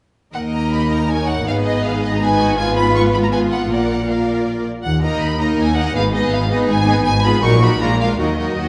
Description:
quick classical-period movement for symphony orchestra; 161 BPM; 3/4; straight; Eb minor; A4 = 440 Hz
rich studio violin section; melody; 0.3-8.7 s; Eb5 to Db6; -24 LUFS; equal
clear studio violin section; second line; 0.3-8.7 s; F4 to Eb5; -25 LUFS; equal
rich studio viola section; accompaniment; 0.3-8.7 s; Gb3 to F4; -23 LUFS; equal
dark studio cello section; bass; 0.3-8.7 s; Eb2 to Eb3; -25 LUFS; equal
warm studio double bass section; bass; 0.3-8.7 s; Ab1 to Eb2; -24 LUFS; equal
moderate scoring stage reverb, RT60 1.8 s; nothing above 10.7 kHz; -17 LUFS; mono
0.3-8.7 A section
0.3 Eb5; 1.5 Abm; 2.6 Fdim/Ab; 3.7 Bb; 4.8 Eb5; 6.0 Abm; 7.1 Fdim/Ab; 7.4 Ebm/Bb; 7.8 Bb7
| 0.34 0.72 1.09 | 1.46 1.83 2.21 | 2.57 2.94 3.31 | 3.69 4.07 4.45 | 4.83 5.21 5.58 | 5.95 6.33 6.70 | 7.06 7.43 7.81 | 8.19 8.58

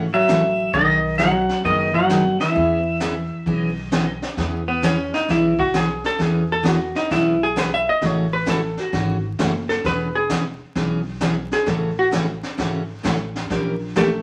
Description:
country, western swing; 132 BPM; 4/4; swing 66% on 8ths; E major; A4 = 445 Hz
picked steel-string acoustic guitar; accompaniment; 0.0-14.1 s; B2 to A#4; -25 LUFS; equal
upright bass; bass; 0.0-14.2 s; E1 to E2; -32 LUFS; equal
pedal steel guitar; melody; 0.1-4.2 s; D#5 to F#5; -23 LUFS; equal
hollow-body jazz guitar; second line; 0.1-14.2 s; D#3 to E5; -24 LUFS; equal
jazz brush drum kit; drums; 0.3-14.2 s; brushed snare drum, hi-hat, kick drum, snare drum; -30 LUFS; equal
wet studio reverb, RT60 0.6 s; vinyl crackle; -20 LUFS; mono
0.0-4.4 A section; 4.4-14.2 B section
hollow-body jazz guitar solo 4.4-14.2
0.0 F#m7; 0.7 B6; 2.6 E6; 8.0 A6; 9.8 E6; 11.7 A6; 13.5 A#dim7
0.28 | 0.73 1.19 1.64 2.10 | 2.55 3.01 3.46 3.92 | 4.37 4.83 5.29 5.74 | 6.20 6.65 7.11 7.56 | 8.02 8.48 8.93 9.39 | 9.85 10.30 10.76 11.22 | 11.67 12.13 12.59 13.04 | 13.50 13.96

